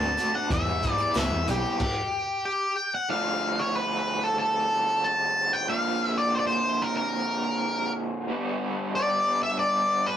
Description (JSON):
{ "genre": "psychedelic rock", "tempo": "92 BPM", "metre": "4/4", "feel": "straight", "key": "unclear", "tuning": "A4 = 440 Hz", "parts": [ { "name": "octave-fuzz lead guitar", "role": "melody", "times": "0.0-10.2 s", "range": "G4 to A5", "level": "-25 LUFS", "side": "left 1 dB", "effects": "distortion" }, { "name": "raw garage guitar", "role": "riff", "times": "0.0-10.2 s", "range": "G2 to F#4", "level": "-29 LUFS", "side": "right 1 dB", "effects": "overdrive, tremolo" }, { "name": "fingered electric bass", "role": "bass", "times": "0.0-1.6 s", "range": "B1 to E2", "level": "-30 LUFS", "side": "equal", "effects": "none" }, { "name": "tambourine", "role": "percussion", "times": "0.0-1.7 s", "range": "none", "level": "-48 LUFS", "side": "right 5 dB", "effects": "none" }, { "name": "crunchy breakbeat drum kit", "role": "drums", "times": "0.2-2.0 s", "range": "crash cymbal, hi-hat, kick drum, snare drum", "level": "-31 LUFS", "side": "equal", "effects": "none" } ], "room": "moderate studio reverb, RT60 0.5 s", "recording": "rough rehearsal-room recording, warm saturation", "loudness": "-24 LUFS", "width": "side -10 dB against mid", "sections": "0.0-3.1 A section; 3.1-10.2 B section", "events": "stop 1.8-3.1", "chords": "0.0 D; 0.5 Em; 3.1 Dm; 5.7 Bb; 8.3 G", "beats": "| 0.51 1.16 1.80 2.45 | 3.10 3.75 4.40 5.05 | 5.70 6.34 6.99 7.64 | 8.29 8.94 9.59" }